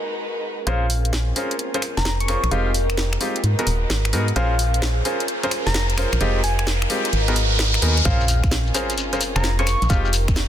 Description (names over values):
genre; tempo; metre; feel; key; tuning
UK garage, two-step garage; 130 BPM; 4/4; swing 66% on 16ths; Bb dorian; A4 = 440 Hz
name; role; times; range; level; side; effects
warm symphonic violin section; sustained chords; 0.0-10.5 s; Ab3 to C5; -33 LUFS; left 1 dB; sidechain pumping, low-pass filter
deep dark ambient pad; texture; 0.0-10.5 s; Ab4 to F5; -31 LUFS; right 2 dB; chorus, built-in reverb, sidechain pumping
soft struck synth lead; melody; 0.7-10.1 s; F5 to Db6; -29 LUFS; left 1 dB; chorus, tape echo
bright concert grand piano; stabs; 0.7-10.1 s; Ab3 to C5; -26 LUFS; left 1 dB; low-pass filter, tape echo
organ-like FM bass; bass; 0.7-10.5 s; Eb1 to Ab2; -21 LUFS; equal; none
garage drum kit; drums; 0.7-10.5 s; finger snaps, hi-hat, snare drum; -26 LUFS; equal; soft clipping on snare, high-pass filter on snare, high-pass filter on hats
riser and sub drop; sound effects; 3.1-9.9 s; none; -28 LUFS; equal; none
electronic kick drum; drums; 8.1-10.3 s; none; -20 LUFS; equal; none
shekere; percussion; 8.1-10.5 s; none; -30 LUFS; left 6 dB; none
room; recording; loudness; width
light reverb; dense, heavily limited modern master; -18 LUFS; side -10 dB against mid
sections
0.7-8.1 A section; 8.1-10.5 B section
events
build-up 0.7-8.1; filter sweep on soft synth lead 0.7-8.1; riser 3.1-8.1; drop 8.1-10.5; impact 8.1-9.9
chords
0.0 Abm9; 0.7 Bbm9; 2.5 Fm9; 3.4 Abm9; 4.4 Bbm9; 6.2 Fm9; 7.1 Abm9; 8.1 Bbm9; 9.9 Fm9